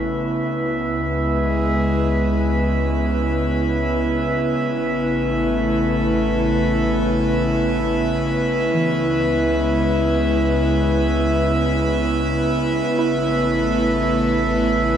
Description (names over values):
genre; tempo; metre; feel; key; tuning
ambient; 58 BPM; 4/4; straight; C# minor; A4 = 438 Hz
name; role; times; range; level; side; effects
airy breathy pad; sustained chords; 0.0-15.0 s; C#3 to B4; -19 LUFS; equal; chorus
soft round pluck; arpeggios; 0.0-15.0 s; E3 to G#5; -32 LUFS; right 3 dB; none
warm sub bass; bass; 0.0-15.0 s; A1 to C#2; -26 LUFS; equal; none
drifting glass-harmonics texture; texture; 0.0-15.0 s; E5; -26 LUFS; right 2 dB; chorus, built-in reverb
room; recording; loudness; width
wet lush hall reverb, RT60 3.3 s; none; -17 LUFS; side -9 dB against mid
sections
0.0-15.0 A section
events
none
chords
0.5 C#m7; 4.6 Aadd9; 8.7 C#m7; 12.9 Aadd9